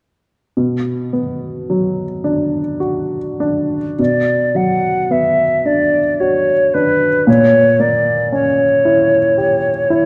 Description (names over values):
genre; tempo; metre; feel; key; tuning
classical, romantic duo for flute and grand piano; 49-58 BPM; 3/4; rubato; B minor; A4 = 441 Hz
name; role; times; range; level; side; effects
warm baby grand piano; accompaniment; 0.6-10.1 s; A#2 to G4; -19 LUFS; equal; none
concert flute; melody; 4.0-10.1 s; B4 to F#5; -16 LUFS; equal; none
room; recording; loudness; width
moderate concert hall reverb, RT60 2.2 s; dark, warm production; -15 LUFS; mono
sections
0.6-4.0 A section; 4.0-10.1 B section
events
none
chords
0.6 Bm; 7.3 A#dim7